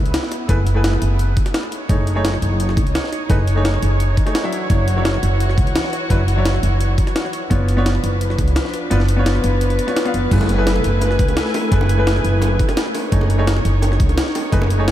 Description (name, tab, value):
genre	liquid drum and bass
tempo	171 BPM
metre	4/4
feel	straight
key	F# minor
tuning	A4 = 440 Hz
part	warm chamber string section	sustained chords	0.0-14.9 s	E3 to G#5	-25 LUFS	left 1 dB	sidechain pumping
part	upright bass	bass	0.0-14.9 s	F#1 to C#2	-17 LUFS	equal	none
part	breakbeat sampler-style drum kit	drums	0.1-14.9 s	crash cymbal, hi-hat, snare drum	-24 LUFS	equal	studio reverb
part	clear concert grand piano	accompaniment	0.5-14.9 s	F#3 to E#5	-24 LUFS	left 1 dB	analog delay
part	electronic kick drum	drums	0.5-14.6 s	none	-18 LUFS	equal	overdrive, studio reverb
part	bongos	percussion	10.4-14.7 s	none	-26 LUFS	right 2 dB	none
part	breathy alto saxophone	melody	10.7-12.8 s	A4 to B4	-28 LUFS	equal	analog delay
room	light reverb, small room reverb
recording	none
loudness	-15 LUFS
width	side -12 dB against mid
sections	0.0-14.9 A section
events	kick drops out 8.9-10.3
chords	0.0 F#m11; 1.7 B13/F# (rootless); 4.5 Dmaj9/F#; 7.5 C#7b9/F#; 10.3 F#m11; 12.9 B13/F# (rootless)